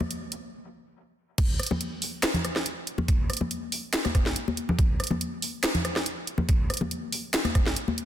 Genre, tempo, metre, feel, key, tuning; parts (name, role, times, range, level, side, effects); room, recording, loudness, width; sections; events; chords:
dubstep; 141 BPM; 4/4; half-time
congas; percussion; 0.0-8.0 s; -30 LUFS; left 2 dB; dub echo
garage drum kit; drums; 0.1-8.1 s; crash cymbal, handclaps, hi-hat, rim click, snare drum; -28 LUFS; equal; soft clipping on snare
electronic kick drum; drums; 1.4-7.6 s; -23 LUFS; right 1 dB; high-pass filter on kick, high-pass filter on room
moderate echo chamber reverb, RT60 1.6 s; dense, heavily limited modern master; -25 LUFS; side -11 dB against mid
0.0-1.4 A section; 1.4-8.1 B section
build-up 0.0-1.4; stop 0.5-1.4; drop 1.4-8.1